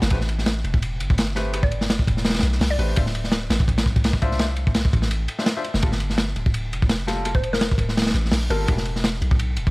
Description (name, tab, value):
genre	drum and bass, jungle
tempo	168 BPM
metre	4/4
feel	swing 55% on 16ths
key	A minor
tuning	A4 = 440 Hz
part	long sustained 808-style bass	bass	0.0-9.7 s	D1 to C2	-24 LUFS	equal	none
part	crunchy breakbeat drum kit	drums	0.0-9.7 s	hi-hat, kick drum, ride cymbal, snare drum	-21 LUFS	equal	none
part	bright baby grand piano	stabs	0.1-8.7 s	E3 to E5	-32 LUFS	left 2 dB	vintage 12-bit sampler grit, dub echo
part	mallet-like synth pluck	melody	1.6-3.0, 7.3-8.7 s	Bb4 to D5	-31 LUFS	left 1 dB	chorus, dub echo
room	studio reverb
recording	vinyl crackle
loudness	-19 LUFS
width	side -23 dB against mid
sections	0.0-9.7 A section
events	none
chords	0.1 Am9; 3.0 Dm7; 5.8 Gm9; 8.7 E7(no3)